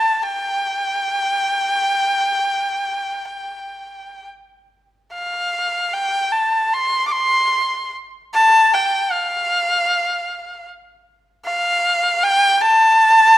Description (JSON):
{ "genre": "chinese traditional", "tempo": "free time", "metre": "none", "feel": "none", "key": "unclear", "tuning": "A4 = 442 Hz", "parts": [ { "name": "bright erhu", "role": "solo", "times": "0.0-13.4 s", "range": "F5 to D6", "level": "-15 LUFS", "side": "equal", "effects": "none" } ], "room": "moderate recital hall reverb, RT60 1.5 s", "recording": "none", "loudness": "-15 LUFS", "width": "side -14 dB against mid", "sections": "0.0-5.1 A section; 5.1-13.4 B section", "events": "none", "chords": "none" }